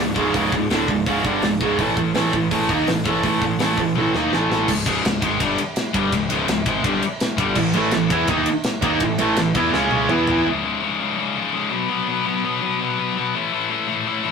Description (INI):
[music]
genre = heavy metal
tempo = 166 BPM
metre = 4/4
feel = straight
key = C# minor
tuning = A4 = 440 Hz
[part]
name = scooped high-gain guitar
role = riff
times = 0.0-14.3 s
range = C#2 to E4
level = -22 LUFS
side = left 5 dB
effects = distortion
[part]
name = tight distorted guitar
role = riff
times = 0.0-4.7, 7.6-10.5 s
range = C#2 to E4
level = -20 LUFS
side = right 4 dB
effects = distortion
[part]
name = fuzz picked electric bass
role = bass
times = 0.0-10.4 s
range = C#1 to E2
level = -29 LUFS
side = equal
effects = overdrive
[part]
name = tight metal drum kit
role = drums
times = 0.2-10.4 s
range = crash cymbal, hi-hat, kick drum, ride cymbal, snare drum, toms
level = -25 LUFS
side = equal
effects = none
[part]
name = distorted electric guitar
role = riff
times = 4.7-10.5 s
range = C#2 to E4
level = -25 LUFS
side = equal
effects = distortion
[sound]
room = moderate stone room reverb, RT60 1.1 s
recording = rough rehearsal-room recording, warm saturation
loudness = -18 LUFS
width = side -6 dB against mid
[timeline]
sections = 0.0-4.7 A section; 4.7-10.5 B section; 10.5-14.3 C section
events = drum fill 4.0-4.7, 9.7-10.5; half time 10.5-14.3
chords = 0.0 C#5; 1.8 A5; 4.7 C#5; 7.6 A5; 9.7 C#5; 10.1 E5; 10.5 C#5; 11.7 B5; 13.3 A5